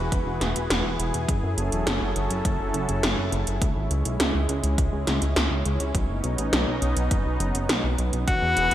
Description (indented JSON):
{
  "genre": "synthwave",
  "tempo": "103 BPM",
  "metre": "4/4",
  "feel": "straight",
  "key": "unclear",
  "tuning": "A4 = 440 Hz",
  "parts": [
    { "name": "lush unison pad", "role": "sustained chords", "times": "0.0-8.7 s", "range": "E3 to B4", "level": "-29 LUFS", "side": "equal", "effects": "chorus, sidechain pumping" },
    { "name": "chorused synth bass", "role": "bass", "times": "0.0-8.7 s", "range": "E1 to F#2", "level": "-26 LUFS", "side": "equal", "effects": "none" },
    { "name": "80s electronic pad drums", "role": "drums", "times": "0.1-8.7 s", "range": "hi-hat, snare drum", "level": "-28 LUFS", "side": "equal", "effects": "gated reverb" },
    { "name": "electronic kick drum", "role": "drums", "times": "0.1-8.4 s", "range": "none", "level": "-25 LUFS", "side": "equal", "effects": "overdrive" },
    { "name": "bright tenor saxophone", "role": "melody", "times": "8.3-8.7 s", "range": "F#4", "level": "-20 LUFS", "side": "left 3 dB", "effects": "none" }
  ],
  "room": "moderate plate reverb, RT60 3.6 s",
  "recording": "bright 1980s-style digital production",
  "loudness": "-22 LUFS",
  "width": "side -12 dB against mid",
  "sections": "0.0-8.7 A section",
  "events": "none",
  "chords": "0.0 Eadd9; 1.3 F#m7; 3.6 C#m; 5.9 Badd9"
}